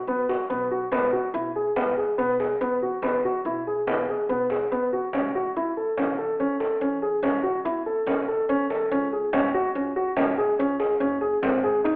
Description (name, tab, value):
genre	contemporary instrumental, chamber music in an uneven meter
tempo	143 BPM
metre	5/4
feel	straight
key	unclear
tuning	A4 = 442 Hz
part	dark baby grand piano	arpeggios	0.1-12.0 s	B3 to A4	-23 LUFS	equal	none
part	upright bass	bass	0.1-12.0 s	Gb1 to F#2	-40 LUFS	equal	none
part	frame drum	percussion	0.3-11.6 s	none	-31 LUFS	equal	none
room	moderate recital hall reverb, RT60 1.2 s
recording	heard from further back in the room, telephone sound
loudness	-22 LUFS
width	side -30 dB against mid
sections	0.0-12.0 A section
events	none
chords	0.0 B5; 0.9 E; 5.1 A; 9.3 Gbsus2; 11.4 Ab